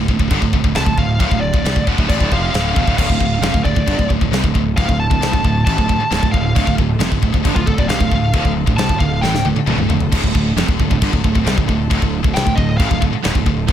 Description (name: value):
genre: heavy metal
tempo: 134 BPM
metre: 4/4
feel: straight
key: D minor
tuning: A4 = 438 Hz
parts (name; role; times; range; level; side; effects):
- heavy high-gain guitar; riff; 0.0-13.7 s; D2 to G3; -24 LUFS; left 9 dB; distortion
- high-gain distorted guitar; riff; 0.0-13.7 s; D2 to G3; -21 LUFS; right 8 dB; distortion
- fuzz fingered electric bass; bass; 0.0-13.7 s; D1 to C2; -21 LUFS; left 1 dB; overdrive
- modern studio drum kit; drums; 0.1-13.7 s; china cymbal, crash cymbal, kick drum, snare drum, toms; -18 LUFS; left 1 dB; none
- high-gain lead guitar; melody; 0.8-9.4, 12.3-13.0 s; F4 to A5; -22 LUFS; equal; distortion
- clear studio string section; sustained chords; 3.0-13.7 s; D3 to A4; -32 LUFS; left 1 dB; none
- crunchy overdriven guitar; riff; 3.0-13.7 s; D2 to G3; -25 LUFS; left 1 dB; none
room: studio reverb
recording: none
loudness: -14 LUFS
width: side -10 dB against mid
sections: 0.0-13.7 A section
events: lead electric guitar solo 0.0-13.7; drum fill 9.2-10.1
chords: 0.0 Dm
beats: 0.31 0.75 | 1.20 1.65 2.09 2.54 | 2.98 3.43 3.88 4.32 | 4.77 5.21 5.66 6.11 | 6.55 7.00 7.45 7.89 | 8.34 8.79 9.23 9.68 | 10.12 10.57 11.01 11.46 | 11.90 12.35 12.79 13.24 | 13.68